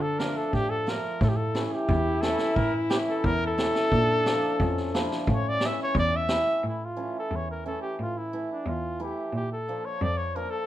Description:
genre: klezmer.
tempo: 89 BPM.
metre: 2/4.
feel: straight.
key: A phrygian dominant.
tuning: A4 = 439 Hz.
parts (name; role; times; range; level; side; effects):
mellow cornet; melody; 0.0-10.7 s; D4 to E5; -28 LUFS; left 1 dB; none.
clear trombone; second line; 0.0-6.3 s; C#4 to E4; -31 LUFS; left 2 dB; none.
bright cello; bass; 0.0-10.4 s; E2 to D3; -30 LUFS; equal; none.
hammered dulcimer; accompaniment; 0.2-10.7 s; E3 to F4; -32 LUFS; right 2 dB; none.
street-band drum kit; drums; 0.2-6.4 s; kick drum, snare drum; -30 LUFS; equal; none.
room: moderate studio reverb, RT60 0.6 s.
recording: minimal, uncompressed stereo recording.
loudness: -24 LUFS.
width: side -13 dB against mid.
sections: 0.0-6.6 A section; 6.6-10.7 B section.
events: cornet solo 0.0-6.6.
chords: 0.0 Dm; 1.2 A; 3.9 Bb; 5.3 A; 9.3 Bb.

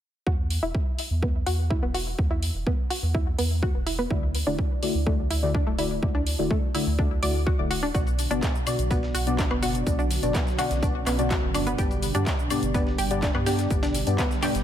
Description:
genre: progressive house.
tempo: 125 BPM.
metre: 4/4.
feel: straight.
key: unclear.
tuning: A4 = 438 Hz.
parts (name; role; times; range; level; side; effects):
analog pluck; arpeggios; 0.3-14.5 s; A3 to D5; -31 LUFS; equal; chorus, cassette tape, sidechain pumping, ping-pong delay.
round analog bass; bass; 0.3-14.6 s; D1 to G2; -28 LUFS; right 1 dB; sidechain pumping.
electronic kick drum; drums; 0.3-14.3 s; none; -26 LUFS; equal; overdrive.
deep house drum kit; drums; 0.5-14.6 s; handclaps, hi-hat, shaker, woodblock; -32 LUFS; left 1 dB; none.
deep mellow chord stab; stabs; 4.1-14.5 s; G2 to D5; -28 LUFS; left 3 dB; chorus, sidechain pumping, ping-pong delay.
warm analog pad; sustained chords; 7.9-14.6 s; B2 to G4; -32 LUFS; right 2 dB; chorus, sidechain pumping.
dusty soul sampler-style drum kit; drums; 7.9-14.6 s; hi-hat, snare drum; -41 LUFS; right 1 dB; sidechain pumping on hats, high-pass filter on hats, high-pass filter on snare.
room: light reverb, digital ambience.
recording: none.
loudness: -22 LUFS.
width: side -10 dB against mid.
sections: 0.3-14.6 A section.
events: filter sweep on synth pluck 0.3-14.6.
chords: 0.3 Esus2; 4.1 Dadd9; 7.9 Bm; 11.8 G.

